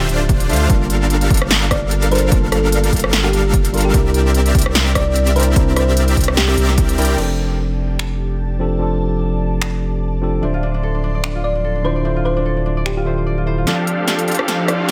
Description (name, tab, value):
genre	future bass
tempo	148 BPM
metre	4/4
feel	swing 55% on 16ths, half-time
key	F major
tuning	A4 = 440 Hz
part	thumb-piano-like synth pluck	melody	0.0-6.8, 11.4-14.8 s	G4 to D5	-26 LUFS	equal	subtle chorus, sidechain pumping, tape echo
part	tine electric piano	accompaniment	0.0-14.9 s	C3 to A5	-25 LUFS	equal	sidechain pumping, tape echo
part	supersaw chords	riff	0.0-7.2, 13.7-14.9 s	D3 to G5	-23 LUFS	equal	sidechain pumping, low-pass filter, tape echo
part	saturated sub bass	bass	0.0-14.9 s	D1 to D2	-21 LUFS	equal	sidechain pumping, high-pass filter
part	big-room dance drum kit	drums	0.1-14.9 s	crash cymbal, finger snaps, hi-hat, rim click, snare drum	-23 LUFS	equal	none
part	electronic kick drum	drums	0.3-6.9 s	none	-19 LUFS	equal	none
part	airy breathy pad	sustained chords	7.2-14.9 s	F3 to C6	-35 LUFS	equal	chorus, phaser, sidechain pumping
part	Celtic harp	arpeggios	10.4-14.9 s	D4 to D5	-30 LUFS	equal	sidechain pumping, tape echo
part	riser	sound effects	14.0-14.9 s	none	-30 LUFS	equal	none
room	digital ambience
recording	none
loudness	-17 LUFS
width	mono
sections	0.0-7.2 A section; 7.2-13.7 B section; 13.7-14.9 C section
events	drop 0.0-7.2; build-up 13.7-14.9; drum fill 13.7-14.9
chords	0.0 Dm7; 0.7 Gm9; 3.9 C9; 7.2 F69; 10.4 Dm7; 13.7 F69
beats	0.29 | 0.70 1.10 1.51 1.91 | 2.32 2.72 3.13 3.54 | 3.94 4.34 4.75 5.16 | 5.56 5.97 6.37 6.78 | 7.18 7.59 7.99 8.40 | 8.80 9.21 9.62 10.02 | 10.43 10.83 11.24 11.64 | 12.05 12.45 12.86 13.26 | 13.67 14.07 14.48 14.89